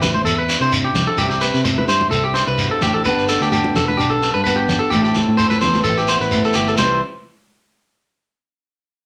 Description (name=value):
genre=highlife guitar band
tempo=129 BPM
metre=4/4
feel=swing 55% on 16ths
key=C major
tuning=A4 = 441 Hz
part: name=picked steel-string acoustic guitar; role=accompaniment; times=0.0-7.0 s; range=E2 to A4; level=-24 LUFS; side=equal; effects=none
part: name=electric guitar at the edge of break-up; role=arpeggios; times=0.0-7.0 s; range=G4 to C5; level=-21 LUFS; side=equal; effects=none
part: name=fingered electric bass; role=bass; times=0.0-7.0 s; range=E1 to C3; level=-25 LUFS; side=equal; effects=none
part: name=congas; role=percussion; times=0.0-7.0 s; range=none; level=-28 LUFS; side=equal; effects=none
part: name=shekere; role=percussion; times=0.0-7.0 s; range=none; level=-24 LUFS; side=equal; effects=none
room=wet studio reverb, RT60 0.5 s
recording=none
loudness=-17 LUFS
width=mono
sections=0.0-6.8 A section; 6.8-8.6 B section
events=none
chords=0.0 C; 3.1 G; 4.9 Am; 6.8 C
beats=0.25 0.72 | 1.18 1.65 2.12 2.58 | 3.05 3.52 3.98 4.45 | 4.92 5.38 5.85 6.31 | 6.78